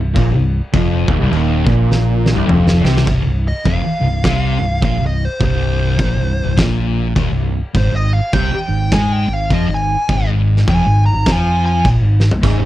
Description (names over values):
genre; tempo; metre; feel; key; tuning
stoner and doom metal; 102 BPM; 4/4; swing 59% on 8ths; unclear; A4 = 436 Hz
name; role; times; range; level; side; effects
crunchy overdriven guitar; riff; 0.0-3.1, 12.4-12.7 s; C2 to C3; -18 LUFS; equal; none
thick fuzz guitar; riff; 0.0-12.7 s; C2 to Ab3; -17 LUFS; equal; distortion
fingered electric bass; bass; 0.0-12.7 s; C1 to Ab2; -18 LUFS; equal; overdrive
oversized low-tuned drum kit; drums; 0.2-12.6 s; crash cymbal, kick drum, snare drum, splash cymbal, toms; -18 LUFS; equal; none
fuzz lead guitar; melody; 3.5-11.9 s; C5 to Bb5; -21 LUFS; equal; distortion, slapback echo
room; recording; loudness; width
little or no reverb; dry, close 1970s-style studio recording; -13 LUFS; side -14 dB against mid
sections
0.0-3.1 A section; 3.1-12.7 B section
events
drum fill 1.9-3.1, 12.1; lead electric guitar solo 3.1-12.7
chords
0.0 Cm; 3.1 N.C.; 7.7 Fm